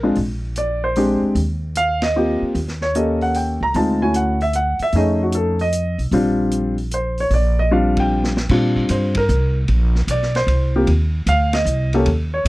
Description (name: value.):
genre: jazz piano trio.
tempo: 151 BPM.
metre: 3/4.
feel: swing 66% on 8ths.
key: Bb major.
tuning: A4 = 440 Hz.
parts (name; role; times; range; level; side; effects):
warm baby grand piano; melody; 0.0-12.5 s; G3 to Bb5; -18 LUFS; equal; none.
upright bass; bass; 0.0-12.5 s; Bb1 to Bb2; -20 LUFS; equal; none.
vintage drum kit; drums; 0.2-12.5 s; crash cymbal, hi-hat, kick drum, ride cymbal, snare drum; -29 LUFS; equal; none.
room: little or no reverb.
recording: dry, close 1970s-style studio recording.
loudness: -16 LUFS.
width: side -19 dB against mid.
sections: 0.0-8.5 A section; 8.5-12.5 A section.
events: band accent 2.0, 7.9, 9.1, 11.5; drum fill 7.7-8.5.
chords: 0.2 Bb13; 1.4 Eb6; 2.5 Eb7#11; 3.7 Dmaj9; 4.9 F7alt; 6.1 Bb69; 9.7 Bbsus2; 10.9 Eb5.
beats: | 0.16 0.56 0.96 | 1.36 1.75 2.15 | 2.55 2.95 3.34 | 3.74 4.14 4.54 | 4.93 5.33 5.72 | 6.12 6.52 6.92 | 7.31 7.71 8.10 | 8.50 8.90 9.29 | 9.69 10.09 10.48 | 10.88 11.27 11.67 | 12.06 12.46.